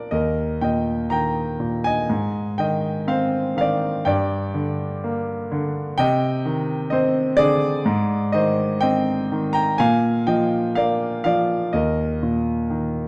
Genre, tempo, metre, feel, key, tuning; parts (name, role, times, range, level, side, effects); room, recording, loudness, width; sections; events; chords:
classical, lyrical solo piano; 62 BPM; 4/4; rubato; Eb major; A4 = 440 Hz
clear concert grand piano; solo; 0.0-13.1 s; Eb2 to Bb5; -22 LUFS; equal
moderate recital hall reverb, RT60 1.6 s; dark, warm production; -22 LUFS; mono
0.1-13.1 A section
0.1 Eb; 2.1 Ab; 4.1 Gm; 6.0 Cmadd9; 7.9 Ab; 9.8 Bb; 11.7 Eb5